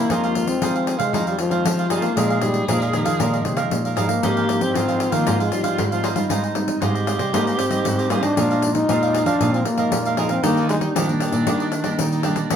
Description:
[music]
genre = samba and choro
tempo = 116 BPM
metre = 4/4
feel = straight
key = Eb major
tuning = A4 = 440 Hz
[part]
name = growling trombone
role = melody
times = 0.0-12.6 s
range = Eb3 to Eb4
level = -23 LUFS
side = left 2 dB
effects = none
[part]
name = clear clarinet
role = second line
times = 0.0-12.6 s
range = D4 to Ab4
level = -27 LUFS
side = right 1 dB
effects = none
[part]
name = cavaquinho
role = accompaniment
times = 0.0-12.6 s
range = D4 to F5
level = -26 LUFS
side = right 6 dB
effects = none
[part]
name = nylon-string guitar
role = accompaniment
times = 0.0-12.6 s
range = F2 to Eb4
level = -26 LUFS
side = left 1 dB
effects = none
[part]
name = nylon-string guitar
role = bass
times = 0.0-12.6 s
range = Ab2 to F3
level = -25 LUFS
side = right 1 dB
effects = none
[part]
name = pandeiro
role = percussion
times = 0.1-12.6 s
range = none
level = -26 LUFS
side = left 3 dB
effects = none
[sound]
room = moderate studio ambience, RT60 0.5 s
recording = band playing live in one room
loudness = -18 LUFS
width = side -8 dB against mid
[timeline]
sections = 0.0-12.5 A section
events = none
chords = 0.1 Fm7; 2.2 Bb7sus4; 4.2 Fm9/Ab; 8.4 Bb7sus4; 10.4 Ebmaj7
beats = | 0.10 0.62 1.14 1.65 | 2.17 2.69 3.20 3.72 | 4.24 4.75 5.27 5.79 | 6.30 6.82 7.34 7.85 | 8.37 8.89 9.40 9.92 | 10.44 10.96 11.47 11.99 | 12.51

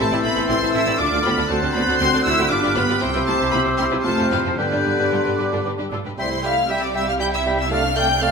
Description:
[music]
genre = quick classical-period movement for symphony orchestra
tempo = 118 BPM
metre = 3/4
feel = rubato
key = C major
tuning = A4 = 440 Hz
[part]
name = rich studio violin section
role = melody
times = 0.0-8.3 s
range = D5 to G6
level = -24 LUFS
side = left 2 dB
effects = none
[part]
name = clear oboe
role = second line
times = 0.0-8.3 s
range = B4 to G5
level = -28 LUFS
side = right 2 dB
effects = none
[part]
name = large flute ensemble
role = second line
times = 0.0-8.3 s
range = C5 to G6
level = -25 LUFS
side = left 1 dB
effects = none
[part]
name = mellow clarinet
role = second line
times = 0.0-8.3 s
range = D4 to E5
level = -29 LUFS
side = left 1 dB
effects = none
[part]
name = rich studio violin section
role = second line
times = 0.0-8.3 s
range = F4 to G5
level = -29 LUFS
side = left 3 dB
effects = none
[part]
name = mellow bassoon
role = accompaniment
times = 0.0-8.3 s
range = C3 to A3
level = -28 LUFS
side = right 3 dB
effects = none
[part]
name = warm studio viola section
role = accompaniment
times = 0.0-8.3 s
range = G3 to G4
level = -28 LUFS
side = right 2 dB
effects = none
[part]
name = mellow French horn section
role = sustained chords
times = 0.0-7.9 s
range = G3 to G4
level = -26 LUFS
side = left 4 dB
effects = none
[part]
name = rich studio cello section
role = bass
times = 0.0-8.3 s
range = C3 to E4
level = -27 LUFS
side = right 2 dB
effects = none
[part]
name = rich studio double bass section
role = bass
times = 0.0-8.3 s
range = G1 to G2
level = -28 LUFS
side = right 3 dB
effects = none
[sound]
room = wet scoring stage reverb, RT60 1.9 s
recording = minimal, uncompressed stereo recording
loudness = -17 LUFS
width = side -5 dB against mid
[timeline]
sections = 0.0-6.2 A section; 6.2-8.3 B section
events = none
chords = 0.0 Am; 1.0 Dm; 1.5 D7; 2.5 G7; 3.0 C; 4.0 F; 4.6 G; 6.2 C; 7.7 Dm7/C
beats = 0.49 0.99 | 1.50 2.00 2.51 | 3.02 3.53 4.05 | 4.58 5.12 5.65 | 6.18 6.70 7.21 | 7.72 8.22

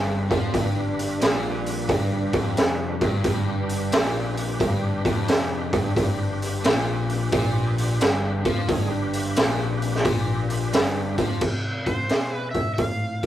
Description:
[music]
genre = blues rock power trio and southern rock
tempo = 88 BPM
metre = 4/4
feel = swing 66% on 8ths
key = G mixolydian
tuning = A4 = 439 Hz
[part]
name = overdriven tonewheel organ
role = sustained chords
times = 0.0-11.4 s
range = G3 to B4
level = -32 LUFS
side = equal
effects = chorus vibrato, fast rotary speaker
[part]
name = overdriven semi-hollow guitar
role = riff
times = 0.0-11.4 s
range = F2 to F3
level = -27 LUFS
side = left 1 dB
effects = none
[part]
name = fingered electric bass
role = bass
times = 0.0-13.3 s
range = F1 to C3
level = -31 LUFS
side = equal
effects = none
[part]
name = raw garage drum kit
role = drums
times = 0.3-13.3 s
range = crash cymbal, hi-hat, kick drum, snare drum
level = -23 LUFS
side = equal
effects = none
[part]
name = overdriven slide guitar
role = melody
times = 11.9-13.3 s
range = C5 to F5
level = -29 LUFS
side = equal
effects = none
[sound]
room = light reverb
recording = rough rehearsal-room recording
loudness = -21 LUFS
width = side -12 dB against mid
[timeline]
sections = 0.0-11.4 A section; 11.4-13.3 B section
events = none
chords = 0.0 G; 11.4 F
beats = | 0.54 1.22 1.89 2.57 | 3.25 3.93 4.61 5.29 | 5.96 6.64 7.32 8.01 | 8.69 9.37 10.05 10.73 | 11.41 12.10 12.78

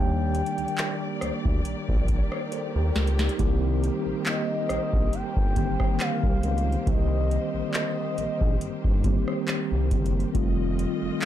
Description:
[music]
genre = contemporary R&B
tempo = 69 BPM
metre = 4/4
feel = swing 54% on 16ths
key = C dorian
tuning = A4 = 440 Hz
[part]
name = gliding portamento lead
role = melody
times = 0.0-9.5 s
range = D5 to G5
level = -32 LUFS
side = left 1 dB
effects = chorus, ping-pong delay
[part]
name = mellow tine electric piano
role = accompaniment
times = 0.0-11.3 s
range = D3 to D5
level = -29 LUFS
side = equal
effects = medium stereo tremolo
[part]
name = dark studio string section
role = sustained chords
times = 0.0-11.3 s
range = Eb3 to Eb5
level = -36 LUFS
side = right 1 dB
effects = none
[part]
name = smooth gliding synth bass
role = bass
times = 0.0-11.1 s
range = F1 to Eb2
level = -26 LUFS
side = equal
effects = none
[part]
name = booming analog drum machine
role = drums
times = 0.3-11.3 s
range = handclaps, hi-hat, kick drum, rim click, snare drum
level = -26 LUFS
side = equal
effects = none
[sound]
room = digital ambience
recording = none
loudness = -23 LUFS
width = side -12 dB against mid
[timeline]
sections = 0.0-11.3 A section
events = drum fill 2.5-3.4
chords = 0.0 Ebmaj7; 3.4 Cm7; 10.3 F9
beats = 0.78 1.65 2.52 | 3.39 4.26 5.13 6.00 | 6.87 7.74 8.61 9.48 | 10.35 11.22

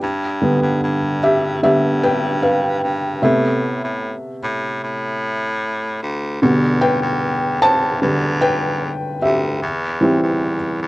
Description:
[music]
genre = pop ballad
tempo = 75 BPM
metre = 4/4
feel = straight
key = unclear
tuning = A4 = 440 Hz
[part]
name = felt-muted upright piano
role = accompaniment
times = 0.0-10.9 s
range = B2 to A5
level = -17 LUFS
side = equal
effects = cassette tape
[part]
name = bright baritone saxophone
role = bass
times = 0.0-10.9 s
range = D2 to A2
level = -22 LUFS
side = equal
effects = none
[sound]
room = moderate booth ambience, RT60 0.2 s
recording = home recording on cassette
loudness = -16 LUFS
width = side -19 dB against mid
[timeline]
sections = 0.0-10.9 A section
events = felt piano solo 0.0-10.9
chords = 0.0 G; 3.2 Amadd9; 6.4 Em7; 9.6 C/E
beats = | 0.02 0.82 1.62 2.42 | 3.22 4.02 4.82 5.62 | 6.42 7.22 8.02 8.82 | 9.62 10.42

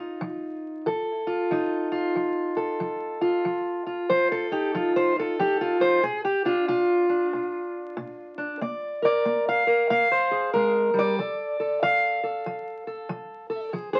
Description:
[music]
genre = acoustic country blues, solo or duo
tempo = 93 BPM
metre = 4/4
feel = swing 63% on 8ths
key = F mixolydian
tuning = A4 = 441 Hz
[part]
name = fingerpicked steel-string acoustic guitar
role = solo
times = 0.0-14.0 s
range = Bb2 to F5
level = -25 LUFS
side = equal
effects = none
[sound]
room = moderate studio reverb, RT60 0.6 s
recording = very old 78 rpm record, vinyl crackle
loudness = -25 LUFS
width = mono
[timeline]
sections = 0.0-14.0 A section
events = none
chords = 0.0 F7; 6.0 Bb7; 11.2 F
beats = 0.21 | 0.85 1.50 2.15 2.80 | 3.44 4.09 4.74 5.38 | 6.03 6.68 7.32 7.97 | 8.61 9.25 9.89 10.54 | 11.18 11.81 12.45 13.09 | 13.73

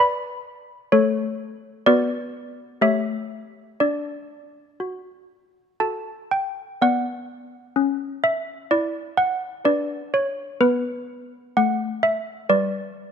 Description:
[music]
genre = classical, tune for handbells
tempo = 62 BPM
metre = 3/4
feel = uneven beats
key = D major, B minor from 6.8 s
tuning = A4 = 438 Hz
[part]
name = malleted handbells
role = solo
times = 0.0-13.1 s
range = G3 to B5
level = -20 LUFS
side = equal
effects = none
[sound]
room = moderate scoring stage reverb, RT60 1.9 s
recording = close, detailed microphones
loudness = -21 LUFS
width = side -7 dB against mid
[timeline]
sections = 0.0-6.8 A section; 6.8-13.1 B section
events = none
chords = 0.0 G; 0.9 N.C.; 1.9 Bm; 2.8 A7; 3.8 D; 6.8 Bm; 12.5 G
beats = 0.01 | 0.94 1.87 2.82 | 3.80 4.80 5.81 | 6.80 7.76 8.71 | 9.66 10.61 11.56 | 12.49

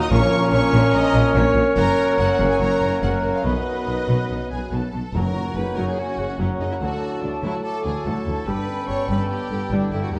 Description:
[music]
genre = cinematic, heroic adventure film score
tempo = 144 BPM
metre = 4/4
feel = straight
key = unclear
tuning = A4 = 439 Hz
[part]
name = rich studio violin section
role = melody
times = 0.0-10.2 s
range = C#5 to Eb6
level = -35 LUFS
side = equal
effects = none
[part]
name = bright symphonic violin section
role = second line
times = 0.0-10.2 s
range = C#4 to Eb5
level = -34 LUFS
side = equal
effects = none
[part]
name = mellow clarinet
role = second line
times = 0.0-10.2 s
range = B3 to F#4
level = -31 LUFS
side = equal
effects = none
[part]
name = mellow cor anglais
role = second line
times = 0.0-10.2 s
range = Bb4 to A5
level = -35 LUFS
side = equal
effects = none
[part]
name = warm symphonic viola section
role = accompaniment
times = 0.0-10.2 s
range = C#3 to Eb5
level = -32 LUFS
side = equal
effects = none
[part]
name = clear trombone section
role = sustained chords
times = 0.0-10.2 s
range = Gb2 to G3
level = -34 LUFS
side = equal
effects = none
[part]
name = dark French horn section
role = sustained chords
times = 0.0-10.2 s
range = D3 to Bb4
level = -31 LUFS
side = equal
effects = none
[part]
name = mellow trumpet section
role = stabs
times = 0.0-10.2 s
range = A4 to C#5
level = -29 LUFS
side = equal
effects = none
[part]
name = silver concert flute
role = second line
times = 0.1-10.2 s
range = F#5 to Gb6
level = -35 LUFS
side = equal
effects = none
[part]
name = mellow tuba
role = bass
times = 0.1-5.0 s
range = Gb1 to B1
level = -31 LUFS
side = equal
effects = none
[part]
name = rich symphonic cello section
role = bass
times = 0.1-10.2 s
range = D2 to B2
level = -29 LUFS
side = equal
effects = none
[part]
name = rich symphonic double bass section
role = bass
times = 0.1-10.2 s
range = Gb1 to D#2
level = -29 LUFS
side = equal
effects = none
[part]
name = timpani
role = percussion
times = 0.1-0.7, 5.1-5.7 s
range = F#2 to Bb2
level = -29 LUFS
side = equal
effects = none
[sound]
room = wet recital hall reverb, RT60 1.4 s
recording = dark, warm production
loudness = -21 LUFS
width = mono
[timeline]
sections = 0.0-5.1 A section; 5.1-10.2 B section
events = none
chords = 0.1 Bbm; 1.8 Gb; 3.4 B; 5.1 F#; 6.8 D; 8.5 G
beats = | 0.11 0.52 0.94 1.35 | 1.77 2.18 2.60 3.02 | 3.45 3.87 4.30 4.72 | 5.14 5.56 5.98 6.39 | 6.81 7.22 7.64 8.06 | 8.47 8.89 9.30 9.72 | 10.13

